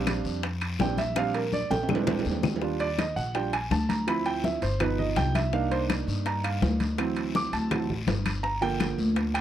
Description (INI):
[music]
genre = Afro-Cuban jazz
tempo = 165 BPM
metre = 4/4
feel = straight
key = Eb major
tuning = A4 = 441 Hz
[part]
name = warm concert grand piano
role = accompaniment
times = 0.0-9.4 s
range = D3 to D6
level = -28 LUFS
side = right 4 dB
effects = none
[part]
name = upright bass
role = bass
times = 0.0-9.4 s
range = G1 to G2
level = -30 LUFS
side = left 1 dB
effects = none
[part]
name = bongos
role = percussion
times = 0.1-9.4 s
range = none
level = -34 LUFS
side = left 7 dB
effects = none
[part]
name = claves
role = percussion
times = 0.1-9.4 s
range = none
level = -37 LUFS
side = left 14 dB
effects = none
[part]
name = congas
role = percussion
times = 0.1-9.4 s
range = none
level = -32 LUFS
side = left 3 dB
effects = none
[part]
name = guiro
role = percussion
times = 0.1-9.4 s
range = none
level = -42 LUFS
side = left 6 dB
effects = none
[part]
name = timbales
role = percussion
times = 0.1-9.4 s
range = none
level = -34 LUFS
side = right 5 dB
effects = none
[sound]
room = light reverb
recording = dry, close 1970s-style studio recording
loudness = -25 LUFS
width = side -11 dB against mid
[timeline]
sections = 0.0-2.6 A section; 2.6-9.4 A section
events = grand piano solo 0.0-9.4; drum fill 1.2-2.6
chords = 0.0 Bb6; 1.9 Bb9; 2.6 Ebmaj7; 4.1 Dm9; 4.8 G7b13; 5.5 Cm9; 7.0 D7; 8.4 Gm7